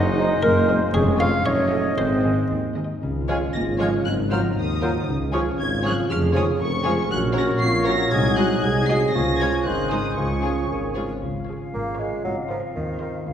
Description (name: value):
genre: cinematic, playful, whimsical film cue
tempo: 118 BPM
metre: 2/4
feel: straight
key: Db major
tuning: A4 = 439 Hz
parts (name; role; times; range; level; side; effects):
- buff-stop harpsichord; melody; 0.0-2.5 s; Ab4 to F5; -28 LUFS; equal; none
- hollow concert flute; second line; 0.0-13.3 s; Ab4 to Db6; -32 LUFS; left 1 dB; none
- mellow oboe; second line; 0.0-11.0 s; C5 to F5; -32 LUFS; equal; none
- warm clarinet; second line; 0.0-13.3 s; C4 to F5; -31 LUFS; equal; none
- clear bassoon; accompaniment; 0.0-13.3 s; Eb3 to Bb3; -30 LUFS; equal; none
- concert harp; arpeggios; 0.0-13.3 s; F2 to Eb5; -30 LUFS; left 3 dB; none
- mellow tuba; bass; 0.0-11.1 s; F1 to Eb2; -27 LUFS; right 2 dB; none
- muted chamber double bass section; bass; 0.0-13.3 s; F1 to F2; -29 LUFS; right 1 dB; none
- muted studio cello section; bass; 0.0-13.3 s; Db2 to F4; -30 LUFS; right 1 dB; none
- muted chamber violin section; melody; 0.2-13.2 s; Eb5 to C7; -29 LUFS; left 2 dB; none
- muted chamber violin section; second line; 0.2-13.2 s; Ab4 to Eb5; -33 LUFS; left 3 dB; none
- muted chamber viola section; accompaniment; 0.2-13.2 s; F3 to Bb4; -32 LUFS; right 2 dB; none
- dark French horn section; sustained chords; 0.2-13.3 s; Ab3 to Bb4; -28 LUFS; equal; none
room: wet scoring stage reverb, RT60 1.6 s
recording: heard from further back in the room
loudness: -19 LUFS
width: side -9 dB against mid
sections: 0.0-3.0 A section; 3.0-11.2 B section; 11.2-13.3 C section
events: none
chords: 0.0 Ab7/Gb; 0.9 Db/F; 1.5 Ebm7b5/Gb; 2.0 Ab; 3.0 Db; 4.1 Ab13; 5.1 Db; 6.1 Db/F; 7.1 Gb/Bb; 8.1 Ab7/C; 9.1 Db; 9.7 Ab7; 10.2 Db; 12.2 Ab69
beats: 0.44 | 0.95 1.46 | 1.99 2.51 | 3.03 3.55 | 4.06 4.57 | 5.08 5.59 | 6.09 6.60 | 7.11 7.62 | 8.13 8.64 | 9.15 9.66 | 10.18 10.70 | 11.22 11.74 | 12.25 12.76 | 13.26